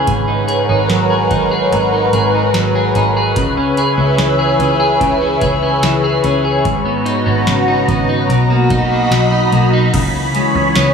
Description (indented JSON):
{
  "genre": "dream pop",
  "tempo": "73 BPM",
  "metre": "4/4",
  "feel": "straight",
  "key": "C# dorian",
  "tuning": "A4 = 439 Hz",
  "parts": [
    { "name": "lush unison pad", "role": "sustained chords", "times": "0.0-10.9 s", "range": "E3 to B5", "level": "-15 LUFS", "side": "equal", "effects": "chorus, phaser" },
    { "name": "clean electric guitar", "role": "arpeggios", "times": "0.0-10.9 s", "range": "G#2 to G#4", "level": "-16 LUFS", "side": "left 1 dB", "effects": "lush chorus, tape echo" },
    { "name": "picked electric bass", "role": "bass", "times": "0.0-10.9 s", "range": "G#1 to C#2", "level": "-20 LUFS", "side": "right 2 dB", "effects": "none" },
    { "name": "booming analog drum machine", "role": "drums", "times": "0.1-10.9 s", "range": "crash cymbal, hi-hat, kick drum, snare drum, tambourine", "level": "-22 LUFS", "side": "right 1 dB", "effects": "none" },
    { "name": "vibraphone with soft mallets", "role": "texture", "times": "10.8-10.9 s", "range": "C#5", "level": "-16 LUFS", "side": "equal", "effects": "none" }
  ],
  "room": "moderate huge ambient reverb, RT60 4.2 s",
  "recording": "studio ambience",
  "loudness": "-12 LUFS",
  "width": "side -6 dB against mid",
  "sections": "0.0-9.9 A section; 9.9-10.9 B section",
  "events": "none",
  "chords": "0.1 G#m11; 3.4 C#m7; 6.7 G#m11; 8.3 Bmaj7; 9.9 C#m7",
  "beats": "| 0.07 0.90 1.72 2.54 | 3.36 4.18 5.01 5.83 | 6.65 7.47 8.29 9.12 | 9.94 10.76"
}